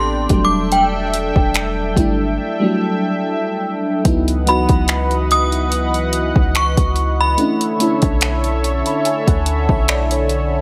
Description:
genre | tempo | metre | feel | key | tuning
contemporary R&B | 72 BPM | 4/4 | swing 54% on 16ths | C# phrygian | A4 = 440 Hz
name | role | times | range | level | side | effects
synth chime | melody | 0.0-9.7 s | G5 to D#6 | -22 LUFS | equal | ensemble chorus
FM electric piano with soft pad layer | accompaniment | 0.0-10.6 s | F#3 to B5 | -23 LUFS | equal | chorus
lush unison pad | sustained chords | 0.0-10.6 s | D3 to G5 | -24 LUFS | equal | chorus
warm 808-style bass | bass | 0.0-10.6 s | E1 to D2 | -23 LUFS | equal | none
smooth R&B drum kit | drums | 0.3-10.5 s | finger snaps, hi-hat, kick drum | -20 LUFS | equal | overdrive
large celesta | texture | 4.5-10.1 s | F#5 to E6 | -34 LUFS | equal | none
room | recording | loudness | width
light reverb, digital ambience | none | -17 LUFS | mono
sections
0.0-4.0 A section; 4.0-10.6 B section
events
break 2.4-4.0; FM electric piano fill 8.2-10.6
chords
0.3 Em11; 4.0 C#m11; 7.4 Bm11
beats
| 0.72 1.55 2.38 3.22 | 4.05 4.88 5.72 6.55 | 7.38 8.22 9.05 9.88

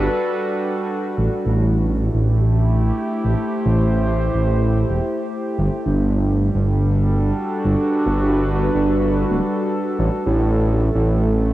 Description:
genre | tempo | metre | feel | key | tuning
IDM | 109 BPM | 4/4 | straight | A dorian | A4 = 440 Hz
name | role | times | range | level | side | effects
warbly nostalgic lead | melody | 0.0-0.6 s | B4 | -33 LUFS | left 6 dB | none
warbly tape-like pad | sustained chords | 0.0-11.5 s | G3 to C5 | -22 LUFS | equal | chorus, built-in reverb, vintage 12-bit sampler grit, cassette tape
dark detuned saw bass | bass | 0.0-11.5 s | D1 to A1 | -17 LUFS | equal | none
room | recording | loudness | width
light reverb, digital ambience | home recording on cassette | -17 LUFS | side -15 dB against mid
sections
0.0-1.2 A section; 1.2-11.5 B section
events
break 0.1-1.2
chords
0.0 Em11/G (rootless); 1.2 Am7; 5.6 Em11/G; 10.0 A7(no3)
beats
0.08 0.63 | 1.18 1.73 2.28 2.83 | 3.38 3.93 4.48 5.03 | 5.58 6.13 6.68 7.23 | 7.79 8.34 8.89 9.44 | 9.99 10.54 11.09

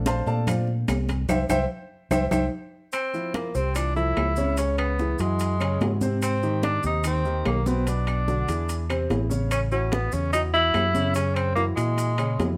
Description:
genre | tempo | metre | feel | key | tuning
Afro-Cuban jazz | 146 BPM | 4/4 | straight | unclear | A4 = 441 Hz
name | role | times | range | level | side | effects
warm grand piano | accompaniment | 0.0-12.6 s | B2 to C6 | -31 LUFS | equal | none
fingered electric bass | bass | 0.0-12.6 s | A1 to Bb2 | -28 LUFS | equal | none
congas | percussion | 0.1-12.6 s | none | -34 LUFS | equal | none
maracas | percussion | 0.1-12.6 s | none | -44 LUFS | equal | none
timbales | percussion | 0.1-12.6 s | none | -34 LUFS | equal | none
claves | percussion | 0.5-12.4 s | none | -40 LUFS | equal | none
warm tenor saxophone | melody | 2.9-12.6 s | Ab3 to E4 | -29 LUFS | equal | none
room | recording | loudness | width
moderate studio reverb, RT60 0.9 s | none | -25 LUFS | mono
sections
0.0-2.9 A section; 2.9-12.6 B section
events
grand piano solo 0.0-2.9; band accent 1.3-2.9; drum fill 2.1-2.9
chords
0.0 Bbmaj9; 1.3 C; 2.9 Fmaj7; 4.6 Dbm7; 5.4 Gbsus2; 6.2 Abmaj7; 7.9 Bm; 8.7 Eaug7; 9.5 A6; 11.2 Gb9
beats
0.06 0.47 0.88 | 1.29 1.70 2.11 2.52 | 2.93 3.34 3.75 4.16 | 4.58 4.99 5.40 5.81 | 6.22 6.63 7.04 7.46 | 7.87 8.28 8.69 9.10 | 9.51 9.93 10.34 10.75 | 11.16 11.57 11.98 12.39

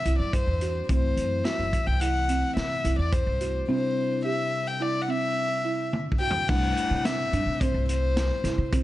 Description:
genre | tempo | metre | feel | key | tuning
progressive instrumental, band music in an uneven meter | 107 BPM | 5/4 | straight | C lydian | A4 = 440 Hz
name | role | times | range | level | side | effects
warm violin | melody | 0.0-8.7 s | C5 to G5 | -28 LUFS | left 2 dB | none
tine electric piano | accompaniment | 0.0-8.8 s | C3 to E4 | -34 LUFS | left 4 dB | phaser
buzzing marimba with soft mallets | arpeggios | 0.1-8.8 s | C4 to G4 | -32 LUFS | right 4 dB | none
upright bass | bass | 0.1-8.8 s | F#1 to C3 | -27 LUFS | equal | none
vintage drum kit | drums | 0.1-8.8 s | crash cymbal, hi-hat, kick drum, snare drum, toms | -29 LUFS | equal | none
room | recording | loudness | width
light reverb | dark, warm production, nothing above 10.7 kHz | -23 LUFS | side -15 dB against mid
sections
0.0-6.5 A section; 6.5-8.8 B section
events
drum fill 5.9-6.5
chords
0.0 C; 0.9 Am; 3.7 C; 6.5 C6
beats
0.33 | 0.89 1.45 2.01 2.57 3.13 | 3.69 4.25 4.81 5.37 5.92 | 6.48 7.04 7.60 8.16 8.72

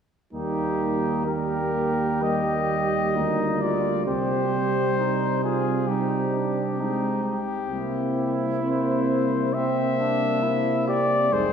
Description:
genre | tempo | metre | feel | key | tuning
classical, brass quintet | 66 BPM | 4/4 | rubato | unclear | A4 = 440 Hz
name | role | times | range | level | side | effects
mellow trumpet | melody | 0.3-11.5 s | G4 to E5 | -27 LUFS | left 5 dB | none
warm flugelhorn | second line | 0.3-11.5 s | C4 to Ab4 | -28 LUFS | right 3 dB | none
dark French horn | accompaniment | 0.3-11.5 s | Bb3 to Eb4 | -29 LUFS | left 1 dB | none
warm euphonium | accompaniment | 0.3-11.5 s | G3 to Bb3 | -30 LUFS | right 3 dB | none
mellow tuba | bass | 0.3-11.5 s | F1 to Eb2 | -29 LUFS | right 3 dB | none
room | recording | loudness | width
wet concert hall reverb, RT60 2.2 s | heard from further back in the room | -22 LUFS | side -7 dB against mid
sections
0.3-11.5 A section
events
none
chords
0.3 Eb; 4.1 C5; 7.7 C7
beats
| 0.33 1.27 2.23 3.16 | 4.08 4.98 5.89 6.80 | 7.70 8.64 9.55 10.44 | 11.33

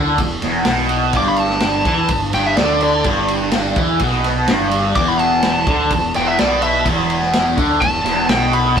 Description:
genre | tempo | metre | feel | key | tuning
psychedelic rock | 126 BPM | 4/4 | straight | E minor | A4 = 442 Hz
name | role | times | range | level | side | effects
thick fuzz guitar | riff | 0.0-8.8 s | E2 to E3 | -16 LUFS | equal | distortion, phaser
growling fingered electric bass | bass | 0.0-8.8 s | E1 to E2 | -25 LUFS | equal | overdrive
vintage drum kit | drums | 0.2-8.8 s | kick drum, ride cymbal, snare drum | -21 LUFS | equal | none
fuzz lead guitar | melody | 1.2-8.8 s | D5 to D6 | -20 LUFS | equal | distortion, analog delay
room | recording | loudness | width
moderate stone room reverb, RT60 1.2 s | rough rehearsal-room recording | -14 LUFS | side -7 dB against mid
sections
0.0-8.8 A section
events
lead electric guitar solo 0.0-8.8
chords
0.0 E5; 1.1 G5; 5.0 E5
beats
0.19 0.67 | 1.14 1.62 2.10 2.57 | 3.05 3.53 4.00 4.48 | 4.96 5.44 5.91 6.39 | 6.87 7.34 7.82 8.30 | 8.77

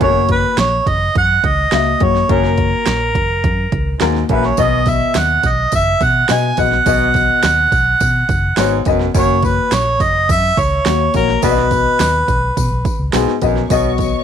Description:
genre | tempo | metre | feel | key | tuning
uptempo 1960s-style soul | 105 BPM | 4/4 | straight | B major | A4 = 440 Hz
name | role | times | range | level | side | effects
mellow harmonica | melody | 0.0-13.1 s | A#4 to G#5 | -15 LUFS | right 2 dB | none
warm upright piano | accompaniment | 0.0-14.2 s | B2 to E5 | -18 LUFS | left 15 dB | none
raspy baritone saxophone | riff | 0.0-13.9 s | F#2 to B2 | -23 LUFS | right 13 dB | none
vintage muted fingered electric bass | bass | 0.0-14.1 s | E#1 to B2 | -19 LUFS | left 1 dB | none
deep house drum kit | drums | 0.0-14.1 s | hi-hat, kick drum, snare drum | -20 LUFS | right 2 dB | none
tambourine | percussion | 4.6-14.1 s | none | -33 LUFS | left 18 dB | none
warm studio string section | second line | 13.7-14.2 s | C#5 to C#6 | -24 LUFS | right 1 dB | none
room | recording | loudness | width
small room ambience | 1960s-style stereo with parts hard left and right | -12 LUFS | side -8 dB against mid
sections
0.0-13.7 A section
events
none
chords
0.0 F#; 4.6 B; 9.2 F#; 11.4 B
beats
| 0.01 0.58 1.15 1.72 | 2.29 2.87 3.44 4.01 | 4.58 5.15 5.72 6.30 | 6.87 7.44 8.01 8.58 | 9.15 9.72 10.29 10.86 | 11.43 12.00 12.57 13.14 | 13.71

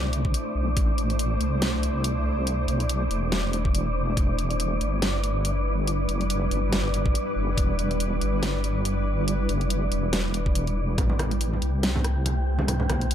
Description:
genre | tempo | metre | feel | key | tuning
deep dubstep | 141 BPM | 4/4 | swing 56% on 16ths, half-time | A minor | A4 = 440 Hz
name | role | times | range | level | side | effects
granular cloud pad | sustained chords | 0.0-13.1 s | G3 to C5 | -30 LUFS | right 1 dB | built-in reverb
deep soft wobble bass | bass | 0.0-13.1 s | E1 to C2 | -26 LUFS | equal | chorus
wind-like tuned noise texture | texture | 0.0-13.1 s | D4 to G5 | -32 LUFS | equal | built-in reverb
dubstep drum kit | drums | 0.1-13.1 s | hi-hat, rim click, snare drum | -29 LUFS | equal | none
electronic kick drum | drums | 0.2-0.9, 3.7-4.3, 7.1-7.7, 10.5-11.1 s | none | -24 LUFS | equal | none
congas | percussion | 11.0-13.0 s | none | -30 LUFS | right 2 dB | dub echo
room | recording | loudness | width
light reverb | none | -23 LUFS | side -10 dB against mid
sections
0.0-13.1 A section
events
none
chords
0.0 Am; 4.2 Em; 11.0 Am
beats
0.34 | 0.77 1.19 1.62 2.04 | 2.47 2.90 3.32 3.75 | 4.17 4.60 5.02 5.45 | 5.87 6.30 6.72 7.15 | 7.58 8.00 8.43 8.85 | 9.28 9.70 10.13 10.55 | 10.98 11.40 11.83 12.26 | 12.68 13.11

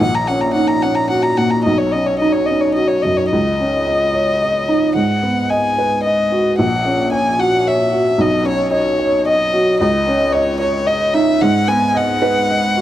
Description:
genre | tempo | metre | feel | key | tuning
neoclassical piano and strings | 111 BPM | 3/4 | rubato | C# dorian | A4 = 440 Hz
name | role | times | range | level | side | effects
rich violin | melody | 0.0-12.8 s | C#5 to A#5 | -18 LUFS | left 2 dB | analog delay
clear upright piano | accompaniment | 0.0-12.8 s | A#1 to D#5 | -16 LUFS | right 1 dB | none
room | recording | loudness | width
wet small room reverb, RT60 0.6 s | none | -13 LUFS | side -12 dB against mid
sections
0.0-3.3 A section; 3.3-12.8 B section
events
none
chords
0.0 F#/A#; 1.7 Badd9; 3.3 C#sus2; 5.0 G#m7; 6.6 F#/A#; 8.2 Badd9; 9.8 C#sus2; 11.4 G#m7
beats
| 0.01 0.55 1.10 | 1.66 2.22 2.77 | 3.33 3.88 4.42 | 4.96 5.51 6.04 | 6.58 7.12 7.66 | 8.20 8.73 9.27 | 9.81 10.34 10.88 | 11.42 11.96 12.51

